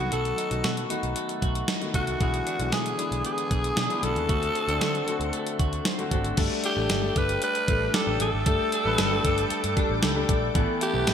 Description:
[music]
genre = 1980s-style pop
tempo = 115 BPM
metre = 4/4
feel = straight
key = unclear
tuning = A4 = 441 Hz
[part]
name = breathy alto saxophone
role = melody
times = 0.0-11.1 s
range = F#4 to B4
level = -28 LUFS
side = equal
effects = ping-pong delay
[part]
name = clear grand piano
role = accompaniment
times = 0.0-11.1 s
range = D3 to B4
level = -30 LUFS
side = left 5 dB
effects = none
[part]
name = twelve-string electric guitar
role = riff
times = 0.0-11.1 s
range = E3 to G#4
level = -34 LUFS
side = right 4 dB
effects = wide subtle chorus
[part]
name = vintage muted picked electric bass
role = bass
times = 0.0-11.1 s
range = G1 to D3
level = -30 LUFS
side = right 1 dB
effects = none
[part]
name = clean 12-bit digital drum machine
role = drums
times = 0.1-11.1 s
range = crash cymbal, hi-hat, kick drum, snare drum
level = -28 LUFS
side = equal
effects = gated reverb
[part]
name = shimmering ambient pad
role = sustained chords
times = 7.4-11.1 s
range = A4 to E6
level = -34 LUFS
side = right 3 dB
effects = chorus, built-in reverb
[sound]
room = moderate plate reverb, RT60 2.1 s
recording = bright 1980s-style digital production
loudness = -23 LUFS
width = side -8 dB against mid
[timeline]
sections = 0.0-6.4 A section; 6.4-11.1 B section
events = none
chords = 0.0 B7; 2.2 E7/B; 4.3 D7; 6.4 Gsus2; 10.6 Asus2

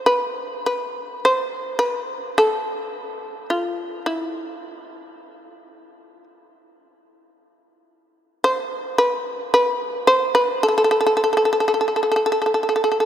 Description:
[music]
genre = japanese traditional, Japanese chamber music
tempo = 54 BPM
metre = 4/4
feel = rubato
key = A hirajoshi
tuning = A4 = 437 Hz
[part]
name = shamisen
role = solo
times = 0.0-13.1 s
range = E4 to C5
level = -18 LUFS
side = equal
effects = none
[sound]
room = wet cathedral reverb, RT60 6.5 s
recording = none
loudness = -18 LUFS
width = side -10 dB against mid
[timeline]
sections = 0.0-13.1 A section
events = none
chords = none

